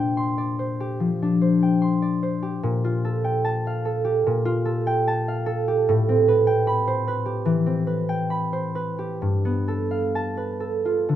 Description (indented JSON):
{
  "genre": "classical, solo harp piece",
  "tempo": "64-77 BPM",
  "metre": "4/4",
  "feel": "rubato",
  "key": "unclear",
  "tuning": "A4 = 439 Hz",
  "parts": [
    { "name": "concert harp", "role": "solo", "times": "0.0-11.2 s", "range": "G2 to C6", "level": "-20 LUFS", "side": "equal", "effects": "none" }
  ],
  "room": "light reverb",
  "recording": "close, detailed microphones",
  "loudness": "-21 LUFS",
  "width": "side -11 dB against mid",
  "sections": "0.0-11.2 A section",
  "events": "none",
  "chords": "0.0 Bb69; 2.6 Gm9/Bb; 5.9 Am9; 9.2 G9"
}